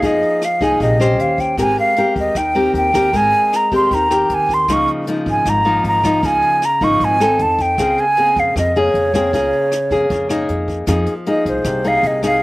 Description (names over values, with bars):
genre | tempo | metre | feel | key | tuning
bossa nova | 155 BPM | 4/4 | straight | F minor | A4 = 440 Hz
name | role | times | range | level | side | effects
mellow hollow jazz flute | melody | 0.0-12.4 s | C5 to Db6 | -16 LUFS | right 1 dB | none
nylon-string guitar | accompaniment | 0.0-12.4 s | Ab2 to C5 | -18 LUFS | left 2 dB | slapback echo
upright bass | bass | 0.0-12.4 s | Ab1 to F2 | -23 LUFS | equal | none
jazz brush drum kit | drums | 0.0-12.3 s | hi-hat, kick drum, rim click | -28 LUFS | equal | none
room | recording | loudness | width
little or no reverb | recorded outdoors, with no room sound | -13 LUFS | side -19 dB against mid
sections
0.0-10.9 A section; 10.9-12.4 B section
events
flute solo 10.9-12.4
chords
0.0 Fm11; 1.2 Eb13; 1.6 Abmaj9; 4.7 Db69; 7.4 F7; 7.8 Bbm9/Db; 10.5 Fm7; 10.9 Fm11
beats
| 0.02 0.41 0.80 1.19 | 1.58 1.97 2.35 2.74 | 3.13 3.52 3.91 4.29 | 4.68 5.07 5.46 5.84 | 6.23 6.62 7.01 7.39 | 7.78 8.17 8.55 8.94 | 9.33 9.72 10.10 10.49 | 10.88 11.26 11.65 12.04 | 12.42